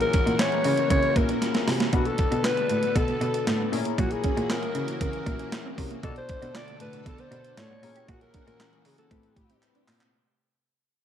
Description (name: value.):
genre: early-eighties boogie funk.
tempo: 117 BPM.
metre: 4/4.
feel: straight.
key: unclear.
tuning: A4 = 439 Hz.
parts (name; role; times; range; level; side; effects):
breathy alto saxophone; melody; 0.0-9.6 s; F#4 to D5; -29 LUFS; left 2 dB; slapback echo.
chorused polysynth; accompaniment; 0.0-10.1 s; C4 to D5; -34 LUFS; left 13 dB; none.
string machine, full ensemble; sustained chords; 0.0-10.1 s; B2 to A4; -35 LUFS; equal; ensemble chorus.
mellow electric guitar; riff; 0.0-10.1 s; F#3 to G4; -37 LUFS; right 12 dB; none.
clear cello; bass; 0.0-10.1 s; A2 to C#3; -30 LUFS; equal; none.
clean 12-bit digital drum machine; drums; 0.0-10.1 s; handclaps, hi-hat, kick drum, snare drum; -28 LUFS; right 1 dB; none.
room: light reverb, digital ambience.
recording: 1960s-style stereo with parts hard left and right.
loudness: -23 LUFS.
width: side -9 dB against mid.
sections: 0.0-10.1 A section.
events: fade-out 0.0-10.1; drum fill 1.4-1.9, 9.6-10.1.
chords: 0.0 F#7; 1.9 Bm7; 3.7 F#7; 6.0 Bm7; 7.8 F#7; 9.1 Am7.